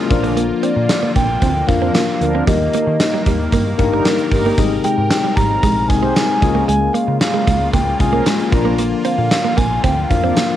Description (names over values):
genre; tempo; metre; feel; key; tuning
1980s-style pop; 114 BPM; 4/4; straight; unclear; A4 = 440 Hz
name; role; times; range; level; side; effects
tine electric piano; accompaniment; 0.0-10.6 s; F3 to Bb4; -20 LUFS; left 7 dB; medium tremolo, cassette tape
sweeping resonant pad; sustained chords; 0.0-10.6 s; C3 to Bb4; -26 LUFS; right 1 dB; chorus, cassette tape
mellow synth brass; stabs; 0.1-10.3 s; F3 to C5; -25 LUFS; right 2 dB; chorus, cassette tape, analog delay
vintage muted picked electric bass; bass; 0.1-10.3 s; G1 to Eb3; -21 LUFS; right 1 dB; none
gated 80s drum kit; drums; 0.1-10.5 s; hi-hat, kick drum, snare drum, tambourine; -18 LUFS; right 1 dB; cassette tape
direct-recorded clean electric guitar; riff; 0.2-10.5 s; G3 to C4; -22 LUFS; right 8 dB; analog chorus, cassette tape, analog delay
breathy hollow alto ocarina; melody; 0.6-10.6 s; D5 to Bb5; -20 LUFS; equal; cassette tape
room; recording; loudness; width
moderate studio reverb, RT60 0.5 s; home recording on cassette; -13 LUFS; side -11 dB against mid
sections
0.0-10.6 A section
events
none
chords
0.1 Bb; 2.5 Ebmaj7; 4.6 Abmaj7; 6.4 Db6; 8.5 Bb